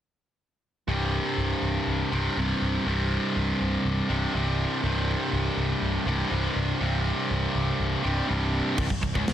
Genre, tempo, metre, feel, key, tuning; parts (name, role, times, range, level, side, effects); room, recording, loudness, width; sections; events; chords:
heavy metal; 122 BPM; 4/4; straight; A4 = 441 Hz
distorted electric guitar; riff; 0.9-9.3 s; C2 to C3; -26 LUFS; equal; overdrive
picked electric bass; bass; 0.9-9.3 s; C1 to Db1; -28 LUFS; equal
tight metal drum kit; drums; 8.8-9.3 s; crash cymbal, kick drum, snare drum; -27 LUFS; equal
small room reverb; dense, heavily limited modern master; -24 LUFS; side -10 dB against mid
0.9-8.8 A section
0.9 C5; 8.8 N.C.